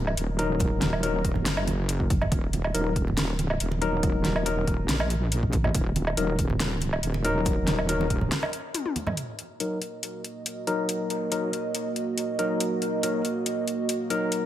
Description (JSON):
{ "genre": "deep dubstep", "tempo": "140 BPM", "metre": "4/4", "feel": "half-time", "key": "Eb minor", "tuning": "A4 = 439 Hz", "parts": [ { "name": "wobble bass", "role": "bass", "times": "0.0-8.3 s", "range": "Eb1 to Bb1", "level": "-27 LUFS", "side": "equal", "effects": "chorus, tube saturation" }, { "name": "deep house drum kit", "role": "drums", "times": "0.1-14.4 s", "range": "hi-hat, snare drum, toms, woodblock", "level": "-30 LUFS", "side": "equal", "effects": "overdrive" }, { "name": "barky tine electric piano", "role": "stabs", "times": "0.4-14.5 s", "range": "Gb3 to Bb4", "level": "-29 LUFS", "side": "left 3 dB", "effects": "medium stereo tremolo, low-pass filter, dub echo" }, { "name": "electronic kick drum", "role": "drums", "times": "0.6-8.2 s", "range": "none", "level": "-28 LUFS", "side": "equal", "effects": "overdrive" }, { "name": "congas", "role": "percussion", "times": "0.6-9.2 s", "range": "none", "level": "-33 LUFS", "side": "right 3 dB", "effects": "none" }, { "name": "dark analog pad", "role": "sustained chords", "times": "9.8-14.5 s", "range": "Bb3 to Eb5", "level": "-30 LUFS", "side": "right 4 dB", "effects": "chorus" } ], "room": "moderate plate reverb, RT60 1.8 s", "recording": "dreamy mix soaked in reverb", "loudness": "-24 LUFS", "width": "side -12 dB against mid", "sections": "0.0-9.2 A section; 9.2-14.5 B section", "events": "break 8.3-9.2; drum fill 8.7-9.2; filter sweep on tine electric piano 9.2-14.5", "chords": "0.0 Ebm" }